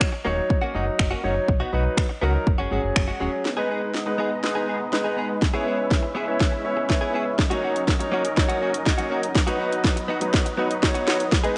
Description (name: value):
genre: dance-pop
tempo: 122 BPM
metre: 4/4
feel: straight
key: G# minor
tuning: A4 = 441 Hz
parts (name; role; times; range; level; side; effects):
- clear concert grand piano; accompaniment; 0.0-11.6 s; F#3 to D#5; -28 LUFS; equal; sidechain pumping
- house drum kit; drums; 0.0-11.6 s; finger snaps, hi-hat, kick drum, snare drum; -24 LUFS; equal; overdrive
- direct-recorded clean electric guitar; riff; 0.1-11.6 s; G#3 to G#4; -33 LUFS; equal; analog chorus
- sub bass with octave; bass; 0.3-3.3 s; D#1 to C#2; -28 LUFS; equal; sidechain pumping
- filtered supersaw swell; sustained chords; 3.5-11.6 s; F#3 to D#5; -32 LUFS; equal; sidechain pumping
room: moderate echo chamber reverb, RT60 1.9 s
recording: nothing above 10.3 kHz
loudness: -23 LUFS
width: mono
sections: 0.0-3.5 A section; 3.5-11.6 B section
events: build-up 3.5-11.6; drum fill 3.5-11.6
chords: 0.0 D#m7; 1.5 B; 2.5 F#sus2; 3.5 G#m; 5.4 C#m7; 7.4 D#m7; 9.4 B